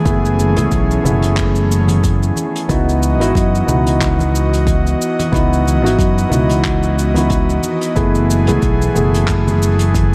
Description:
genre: sunset chillout.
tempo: 91 BPM.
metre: 4/4.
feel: swing 56% on 16ths.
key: F# dorian.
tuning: A4 = 441 Hz.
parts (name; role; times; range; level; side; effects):
dark concert grand piano; accompaniment; 0.0-10.1 s; A3 to G#4; -21 LUFS; equal; low-pass filter, tape echo.
airy breathy pad; sustained chords; 0.0-10.1 s; E3 to D#5; -23 LUFS; equal; chorus.
fingered electric bass; bass; 0.1-10.1 s; F#1 to F#2; -18 LUFS; equal; tube saturation.
electronic kick drum; drums; 0.1-10.1 s; none; -21 LUFS; equal; none.
vintage brush drum kit; drums; 0.1-10.1 s; cabasa, handclaps, hi-hat; -29 LUFS; equal; none.
congas; percussion; 0.1-10.1 s; none; -26 LUFS; equal; none.
room: light reverb, small room ambience.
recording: dark, warm production.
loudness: -15 LUFS.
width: mono.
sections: 0.0-10.1 A section.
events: none.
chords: 0.0 F#m11; 2.7 C#m11; 8.0 F#m11.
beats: | 0.05 0.71 1.37 2.03 | 2.69 3.35 4.01 4.67 | 5.33 5.99 6.65 7.31 | 7.97 8.62 9.29 9.94.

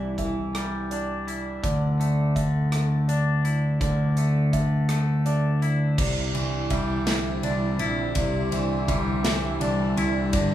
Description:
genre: post-rock.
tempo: 55 BPM (dotted quarters).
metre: 6/8.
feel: straight.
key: C major.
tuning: A4 = 440 Hz.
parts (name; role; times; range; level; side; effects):
felt-muted upright piano; arpeggios; 0.0-10.5 s; D5 to E5; -34 LUFS; right 4 dB; none.
twangy electric guitar; arpeggios; 0.0-10.5 s; G2 to E4; -30 LUFS; left 2 dB; none.
growling picked electric bass; bass; 0.0-10.5 s; G1 to D2; -24 LUFS; equal; overdrive.
big rock drum kit; drums; 0.2-10.5 s; crash cymbal, hi-hat, kick drum, ride cymbal, rim click, snare drum; -30 LUFS; equal; none.
analog string pad; sustained chords; 6.0-10.5 s; D3 to G4; -31 LUFS; right 2 dB; ensemble chorus.
room: moderate recital hall reverb, RT60 1.4 s.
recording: recorded in a church or concert hall, studio ambience.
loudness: -22 LUFS.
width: side -12 dB against mid.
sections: 0.0-6.0 A section; 6.0-10.5 B section.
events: build-up 6.0-10.5.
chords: 0.0 Cadd9; 1.6 Dsus2; 6.0 Cadd9.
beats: 0.54 | 1.63 2.72 | 3.81 4.90 | 5.99 7.08 | 8.16 9.25 | 10.34.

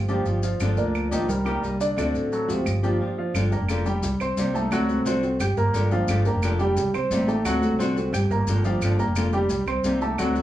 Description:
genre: latin, Cuban son and guajira.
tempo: 175 BPM.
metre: 4/4.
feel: straight.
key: G minor.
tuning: A4 = 440 Hz.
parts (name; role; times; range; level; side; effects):
warm grand piano; arpeggios; 0.0-10.4 s; D3 to G6; -26 LUFS; right 2 dB; none.
upright bass; bass; 0.0-10.4 s; F1 to D2; -25 LUFS; equal; none.
flamenco guitar; accompaniment; 0.1-10.4 s; C3 to G4; -26 LUFS; left 2 dB; none.
maracas; percussion; 0.1-10.4 s; none; -39 LUFS; left 6 dB; none.
claves; percussion; 0.6-10.4 s; none; -36 LUFS; right 6 dB; none.
room: light reverb.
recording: small room ambience.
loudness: -21 LUFS.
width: side -13 dB against mid.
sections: 0.0-3.3 A section; 3.3-10.4 B section.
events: break 3.0-3.3.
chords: 0.0 Gm7; 1.3 Cm7; 2.0 D7; 2.7 Gm7; 4.0 Cm7; 4.7 D7; 5.4 Gm7; 6.8 Cm7; 7.5 D7; 8.1 Gm7; 9.5 Cm7.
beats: 0.26 | 0.61 0.95 1.29 1.64 | 1.98 2.32 2.66 3.01 | 3.35 3.69 4.03 4.38 | 4.72 5.06 5.40 5.74 | 6.08 6.43 6.77 7.11 | 7.45 7.79 8.14 8.48 | 8.82 9.16 9.51 9.85 | 10.19.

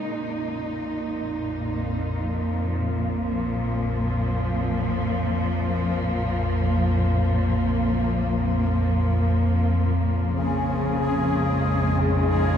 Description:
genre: ambient.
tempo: free time.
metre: none.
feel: none.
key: unclear.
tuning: A4 = 440 Hz.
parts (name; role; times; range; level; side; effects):
dark symphonic cello section; sustained chords; 0.0-12.6 s; Bb2 to Eb4; -25 LUFS; equal; none.
organ-like drone; drone; 0.6-12.6 s; Bb1 to F2; -24 LUFS; equal; ensemble chorus, built-in reverb.
bubbling stepped-filter texture; texture; 0.0, 10.4-12.6 s; Ab4; -28 LUFS; left 2 dB; chorus, built-in reverb.
room: wet cathedral reverb, RT60 5.9 s.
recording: dark, warm production.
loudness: -21 LUFS.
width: side -8 dB against mid.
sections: 0.0-12.6 A section.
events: none.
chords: 0.0 Bb5; 10.4 Dbadd9/Bb.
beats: free time.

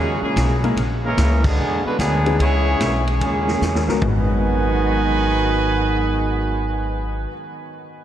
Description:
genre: jazz, big band swing.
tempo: 148 BPM.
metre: 4/4.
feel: swing 66% on 8ths.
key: G# minor.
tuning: A4 = 439 Hz.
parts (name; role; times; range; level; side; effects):
clear trumpet section; melody; 0.0-7.3 s; F#3 to G#5; -23 LUFS; right 1 dB; diffuse ambient delay.
dark trombone section; second line; 0.0-7.3 s; G#2 to C#4; -24 LUFS; right 2 dB; none.
upright bass; bass; 0.0-7.2 s; G#1 to E2; -21 LUFS; equal; none.
swinging big-band drum kit; drums; 0.4-4.1 s; crash cymbal, hi-hat, kick drum, ride cymbal, snare drum, toms; -27 LUFS; equal; none.
warm concert grand piano; accompaniment; 0.6-7.3 s; G#2 to B4; -28 LUFS; left 3 dB; lush chorus.
room: wet cathedral reverb, RT60 6.1 s.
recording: dreamy mix soaked in reverb, cassette tape.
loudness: -17 LUFS.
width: side -11 dB against mid.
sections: 0.0-4.0 A section; 4.0-7.3 B section.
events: band accent 1.4; drum fill 3.6-4.0.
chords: 0.0 D#7sus4; 0.8 A#m7b5; 1.6 E9; 2.4 C#m7; 3.2 D#7sus4; 4.0 G#m7.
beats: 0.36 | 0.77 1.18 1.58 1.99 | 2.39 2.80 3.20 3.61 | 4.01 4.42 4.83 5.23 | 5.64 6.05 6.45 6.86.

